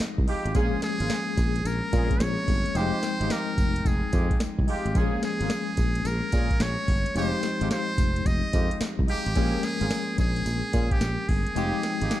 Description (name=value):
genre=R&B, new jack swing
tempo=109 BPM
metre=4/4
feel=swing 65% on 16ths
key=Bb dorian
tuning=A4 = 440 Hz
part: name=mellow tine electric piano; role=accompaniment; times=0.0-12.2 s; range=F3 to G5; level=-30 LUFS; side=left 4 dB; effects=fast stereo tremolo
part: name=sustaining fretless electric bass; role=bass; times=0.0-12.1 s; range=F1 to Bb2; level=-29 LUFS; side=equal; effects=none
part: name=booming analog drum machine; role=drums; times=0.0-12.2 s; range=hi-hat, kick drum, snare drum, tambourine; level=-26 LUFS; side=equal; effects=none
part: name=trumpet with metal mute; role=melody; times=0.3-12.2 s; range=G4 to Eb5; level=-31 LUFS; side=equal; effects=none
part: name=warm horn section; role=stabs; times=0.3-12.2 s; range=Ab3 to Ab4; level=-36 LUFS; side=right 3 dB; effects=none
room=light reverb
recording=dark, warm production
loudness=-23 LUFS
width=side -14 dB against mid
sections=0.0-12.2 A section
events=none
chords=0.0 Fm9; 0.6 Bbm7; 2.8 Fm9; 5.0 Bbm7; 7.2 Fm9; 9.4 Bbm7; 11.6 Fm9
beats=0.00 | 0.55 1.10 1.65 2.20 | 2.75 3.30 3.85 4.40 | 4.95 5.50 6.05 6.61 | 7.16 7.71 8.26 8.81 | 9.36 9.91 10.46 11.01 | 11.56 12.11